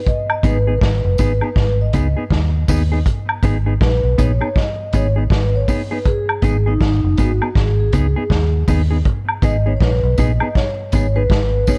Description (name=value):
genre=roots reggae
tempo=80 BPM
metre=4/4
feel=swing 61% on 16ths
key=G# minor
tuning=A4 = 438 Hz
part: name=vibraphone with soft mallets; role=melody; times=0.0-11.8 s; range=D#4 to D#5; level=-25 LUFS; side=equal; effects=none
part: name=vintage drum kit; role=drums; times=0.1-11.8 s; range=hi-hat, kick drum, snare drum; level=-22 LUFS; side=equal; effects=none
part: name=woodblock and tambourine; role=percussion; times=0.3-11.8 s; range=none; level=-27 LUFS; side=equal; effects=none
part: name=mellow electric guitar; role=accompaniment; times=0.4-11.8 s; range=B3 to G#4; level=-26 LUFS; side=equal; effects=none
part: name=vintage muted fingered electric bass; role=bass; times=0.4-11.6 s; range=F#1 to D#2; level=-19 LUFS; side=equal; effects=none
room=studio reverb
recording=cassette tape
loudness=-17 LUFS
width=mono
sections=0.0-11.8 A section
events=vibraphone solo 0.0-11.8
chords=0.0 G#m